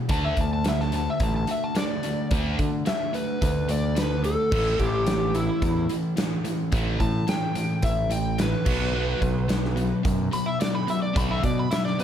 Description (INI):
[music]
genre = classic rock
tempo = 109 BPM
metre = 4/4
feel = straight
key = unclear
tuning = A4 = 442 Hz
[part]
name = sludgy distorted guitar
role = riff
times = 0.0-12.0 s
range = A2 to D4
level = -28 LUFS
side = left 1 dB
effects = overdrive
[part]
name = overdriven slide guitar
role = melody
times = 0.1-12.0 s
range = E4 to B5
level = -28 LUFS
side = left 1 dB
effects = none
[part]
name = growling fingered electric bass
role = bass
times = 0.1-11.7 s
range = A1 to D3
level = -26 LUFS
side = right 1 dB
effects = overdrive
[part]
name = big rock drum kit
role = drums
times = 0.1-12.0 s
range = crash cymbal, hi-hat, kick drum, snare drum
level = -28 LUFS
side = equal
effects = none
[sound]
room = light reverb, small room ambience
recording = none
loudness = -22 LUFS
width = side -9 dB against mid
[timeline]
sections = 0.0-12.0 A section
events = electric slide guitar solo 0.0-12.0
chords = 0.1 D5; 4.5 A5; 8.7 B5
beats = | 0.10 0.65 1.21 1.76 | 2.31 2.86 3.42 3.97 | 4.52 5.07 5.62 6.18 | 6.73 7.28 7.83 8.39 | 8.94 9.49 10.05 10.60 | 11.16 11.71